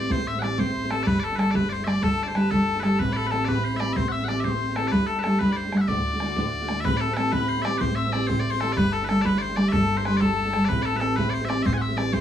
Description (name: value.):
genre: celtic folk, Celtic jig.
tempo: 125 BPM (dotted quarters).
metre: 6/8.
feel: straight.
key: unclear.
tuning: A4 = 440 Hz.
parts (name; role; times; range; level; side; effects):
loud bright bagpipes; melody; 0.0-12.2 s; A4 to G#5; -28 LUFS; left 2 dB; none.
hollow wooden whistle; second line; 0.0-12.2 s; A5 to E6; -31 LUFS; left 6 dB; none.
fingerpicked steel-string acoustic guitar; accompaniment; 0.0-12.2 s; D2 to G4; -24 LUFS; right 1 dB; none.
upright bass; bass; 0.0-12.2 s; G1 to D2; -31 LUFS; equal; none.
bodhran; percussion; 0.1-12.2 s; none; -32 LUFS; right 1 dB; none.
room: moderate studio ambience, RT60 0.5 s.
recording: none.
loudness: -21 LUFS.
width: side -10 dB against mid.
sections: 0.0-6.8 A section; 6.8-12.2 A section.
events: none.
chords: 0.0 Am7; 1.1 Gsus2; 3.0 Am7; 4.9 Gsus2; 5.9 D; 6.8 Am7; 8.8 Gsus2; 10.7 Am7.